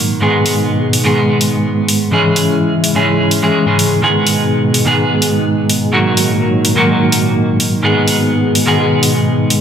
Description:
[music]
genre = EDM, festival progressive house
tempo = 126 BPM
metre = 4/4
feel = straight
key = G# minor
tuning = A4 = 440 Hz
[part]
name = clean electric guitar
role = accompaniment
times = 0.0-9.6 s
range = G#2 to G#4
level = -13 LUFS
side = right 1 dB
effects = harmonic tremolo, digital delay
[part]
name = lush unison pad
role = sustained chords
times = 0.0-9.6 s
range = G#2 to A#4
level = -17 LUFS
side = left 1 dB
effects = chorus
[part]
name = electronic hi-hat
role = drums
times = 0.5-9.6 s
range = none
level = -17 LUFS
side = equal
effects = none
[sound]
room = moderate lush hall reverb, RT60 1.7 s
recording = none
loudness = -11 LUFS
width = side -8 dB against mid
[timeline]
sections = 0.0-9.6 A section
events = filter sweep on analog synth pad 0.0-9.6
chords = 0.2 G#m; 2.1 C#m/G#; 4.0 G#m; 5.9 D#m/G#; 7.8 G#m

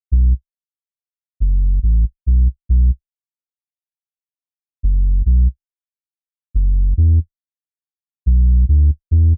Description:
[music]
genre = ambient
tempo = 70 BPM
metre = 4/4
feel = swing 57% on 16ths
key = B minor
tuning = A4 = 440 Hz
[part]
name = warm sub bass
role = bass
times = 0.1-9.3 s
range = F#1 to E2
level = -15 LUFS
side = equal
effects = none
[sound]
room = little or no reverb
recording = none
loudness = -17 LUFS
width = mono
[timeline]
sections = 0.1-9.4 A section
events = none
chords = none

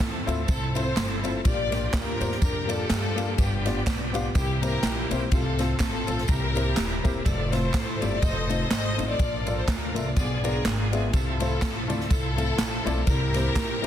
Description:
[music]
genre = uptempo gospel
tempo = 124 BPM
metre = 4/4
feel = swing 57% on 8ths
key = F major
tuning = A4 = 441 Hz
[part]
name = warm studio string section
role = melody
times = 0.0-13.9 s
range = Bb3 to Eb5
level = -30 LUFS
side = left 2 dB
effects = none
[part]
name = bright tonewheel organ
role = sustained chords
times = 0.0-13.9 s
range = E3 to E5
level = -36 LUFS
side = right 2 dB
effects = slow rotary speaker
[part]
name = upright bass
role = bass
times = 0.0-13.9 s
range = Eb1 to G2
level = -29 LUFS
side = equal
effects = none
[part]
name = swinging big-band drum kit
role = drums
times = 0.0-13.9 s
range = kick drum, ride cymbal, snare drum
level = -27 LUFS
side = equal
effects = none
[part]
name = handclaps and tambourine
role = percussion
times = 0.0-13.9 s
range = none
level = -39 LUFS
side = right 4 dB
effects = none
[part]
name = warm concert grand piano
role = accompaniment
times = 0.3-13.9 s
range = G2 to F5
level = -32 LUFS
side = left 4 dB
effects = none
[sound]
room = small room ambience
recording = dense, heavily limited modern master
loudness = -23 LUFS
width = side -10 dB against mid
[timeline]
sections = 0.0-13.9 A section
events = none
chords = 0.0 Fmaj7; 1.5 Bb6; 3.4 G7; 4.4 C7; 5.3 F/C; 6.3 C7; 7.3 Fmaj7; 8.2 F7; 9.2 Bbmaj7; 10.2 Bdim7; 11.1 Fmaj7; 13.1 C7

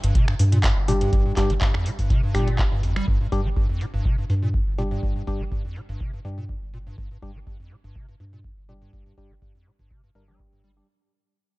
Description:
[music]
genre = acid house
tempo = 123 BPM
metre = 4/4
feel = straight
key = G minor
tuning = A4 = 440 Hz
[part]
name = acid bass, square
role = riff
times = 0.0-10.7 s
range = F2 to G3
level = -27 LUFS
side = equal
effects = overdrive, ensemble chorus, cassette tape
[part]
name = round analog bass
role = bass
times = 0.0-10.8 s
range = G1 to G2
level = -25 LUFS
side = equal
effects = sidechain pumping
[part]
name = electro analog drum machine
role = drums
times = 0.0-10.7 s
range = finger snaps, handclaps, hi-hat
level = -31 LUFS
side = equal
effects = low-pass filter on hats, studio ambience, low-pass filter on snare
[part]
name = electronic kick drum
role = drums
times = 0.1-10.5 s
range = none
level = -23 LUFS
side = equal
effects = studio ambience
[part]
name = percussive organ stab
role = stabs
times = 0.9-10.9 s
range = G3 to Bb4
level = -29 LUFS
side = left 1 dB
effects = chorus, tape echo
[sound]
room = digital ambience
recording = dark, warm production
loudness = -20 LUFS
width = side -21 dB against mid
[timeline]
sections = 0.0-10.9 A section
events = fade-out 0.0-10.9; filter sweep on synth stab 0.0-10.9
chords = 0.0 G5

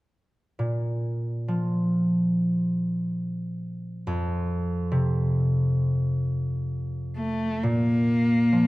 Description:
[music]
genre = classical, romantic duo for cello and harp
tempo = 69 BPM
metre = 4/4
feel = rubato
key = unclear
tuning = A4 = 440 Hz
[part]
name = concert harp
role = accompaniment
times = 0.6-8.7 s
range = F2 to F3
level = -24 LUFS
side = equal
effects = none
[part]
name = rich cello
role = melody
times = 7.2-8.7 s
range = A3 to Bb3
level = -22 LUFS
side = left 1 dB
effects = none
[sound]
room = moderate recital hall reverb, RT60 1.5 s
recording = close, detailed microphones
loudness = -23 LUFS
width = side -19 dB against mid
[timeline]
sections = 0.6-7.6 A section; 7.6-8.7 B section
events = none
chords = 0.6 Bb5; 4.1 F5; 7.6 Bb5

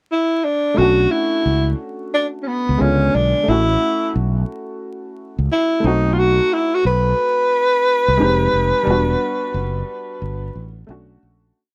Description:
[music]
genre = hip hop, jazz-hop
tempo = 89 BPM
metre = 4/4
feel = swing 65% on 16ths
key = B minor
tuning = A4 = 440 Hz
[part]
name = breathy tenor saxophone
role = melody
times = 0.1-10.9 s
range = B3 to B4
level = -19 LUFS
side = equal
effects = none
[part]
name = warm upright piano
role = accompaniment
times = 0.7-11.6 s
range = D3 to G4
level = -26 LUFS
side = equal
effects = none
[part]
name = fretless electric bass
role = bass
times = 0.8-11.5 s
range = E1 to C#2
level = -22 LUFS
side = equal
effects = none
[sound]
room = light reverb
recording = dry, close 1970s-style studio recording, vinyl crackle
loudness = -18 LUFS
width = mono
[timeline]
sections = 0.0-0.8 pickup bar; 0.8-11.6 A section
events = fade-out 8.9-11.6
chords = 0.0 N.C.; 0.8 Bm9; 2.8 C#7b9; 3.5 F#m7/A; 5.8 B7b9; 8.2 Fm9; 8.9 Em9; 10.9 Bm9

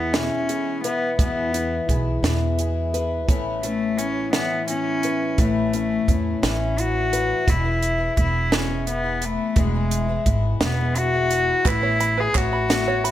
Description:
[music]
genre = indie folk with a building arrangement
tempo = 57 BPM (dotted quarters)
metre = 6/8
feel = straight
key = unclear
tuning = A4 = 440 Hz
[part]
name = rich cello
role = melody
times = 0.0-13.1 s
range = G#3 to G#4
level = -23 LUFS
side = left 2 dB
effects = none
[part]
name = fingerpicked old ladder-braced acoustic guitar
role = accompaniment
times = 0.0-9.6 s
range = A2 to B4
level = -29 LUFS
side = left 1 dB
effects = none
[part]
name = picked twelve-string acoustic guitar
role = accompaniment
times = 0.0-13.1 s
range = E2 to E4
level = -28 LUFS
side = left 4 dB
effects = none
[part]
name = upright bass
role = bass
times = 0.0-13.1 s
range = E1 to E2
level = -25 LUFS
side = right 1 dB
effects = none
[part]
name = compact cocktail drum kit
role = drums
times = 0.1-13.1 s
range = hi-hat, kick drum, snare drum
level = -23 LUFS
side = right 1 dB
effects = none
[part]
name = open-back banjo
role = arpeggios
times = 11.7-13.1 s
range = B4 to B5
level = -28 LUFS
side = right 7 dB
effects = none
[part]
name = group handclap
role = percussion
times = 11.7-12.5 s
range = none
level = -30 LUFS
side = right 8 dB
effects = none
[sound]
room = light reverb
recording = none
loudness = -19 LUFS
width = side -12 dB against mid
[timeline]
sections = 0.0-7.5 A section; 7.5-13.1 B section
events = none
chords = 0.0 E; 3.3 Aadd9; 7.5 E; 11.7 Aadd9

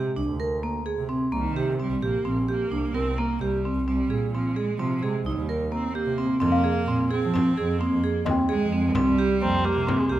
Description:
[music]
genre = contemporary instrumental, chamber music in an uneven meter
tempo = 260 BPM (eighths)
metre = 11/8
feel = straight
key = C minor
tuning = A4 = 441 Hz
[part]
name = rich cello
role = melody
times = 0.0-9.9 s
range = Eb3 to C4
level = -30 LUFS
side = right 4 dB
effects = none
[part]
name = vibraphone with medium hard mallets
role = arpeggios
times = 0.0-10.2 s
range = Bb3 to Bb4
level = -25 LUFS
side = right 1 dB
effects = none
[part]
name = rich double bass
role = bass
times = 0.0-10.2 s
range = Bb1 to F3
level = -28 LUFS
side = right 1 dB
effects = none
[part]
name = frame drum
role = percussion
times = 6.4-10.1 s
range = none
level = -33 LUFS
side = left 3 dB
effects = none
[part]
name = small celesta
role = texture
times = 6.5-9.2 s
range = Eb5 to G5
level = -31 LUFS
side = left 5 dB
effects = none
[part]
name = warm viola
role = second line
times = 9.4-10.2 s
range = Ab3 to C4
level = -25 LUFS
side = equal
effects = none
[sound]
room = wet recital hall reverb, RT60 1.3 s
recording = none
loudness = -22 LUFS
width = side -13 dB against mid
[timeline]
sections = 0.0-6.4 A section; 6.4-10.2 B section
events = none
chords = 0.2 Bb7/C; 1.3 Cm7; 2.7 Gm/C; 3.9 Abmaj13/C; 5.3 Cm7; 6.4 Fm7; 9.0 Cm7

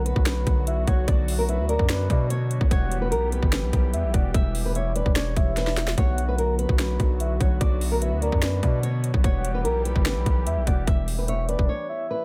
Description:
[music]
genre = hip hop, trap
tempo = 147 BPM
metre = 4/4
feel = half-time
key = B harmonic minor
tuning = A4 = 440 Hz
[part]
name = nylon-string guitar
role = melody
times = 0.0-12.2 s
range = A#4 to E5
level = -32 LUFS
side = equal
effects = low-pass filter
[part]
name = soft octave-layered synth lead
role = second line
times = 0.0-12.2 s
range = D5 to F#5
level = -35 LUFS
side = equal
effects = chorus, tremolo, delay
[part]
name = warm analog pad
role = sustained chords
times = 0.0-12.2 s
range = D3 to G4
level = -36 LUFS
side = equal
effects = lush chorus
[part]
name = distorted 808-style bass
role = bass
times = 0.0-11.7 s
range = E1 to B2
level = -28 LUFS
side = equal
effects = distortion
[part]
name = trap drum kit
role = drums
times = 0.1-11.7 s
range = finger snaps, hi-hat, kick drum, snare drum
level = -26 LUFS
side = equal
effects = none
[sound]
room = little or no reverb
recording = none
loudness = -23 LUFS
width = mono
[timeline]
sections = 0.0-12.2 A section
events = drum fill 5.6-6.0; break 11.7-12.2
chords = 0.0 Bm; 2.7 Em; 6.0 Bm; 9.2 Em

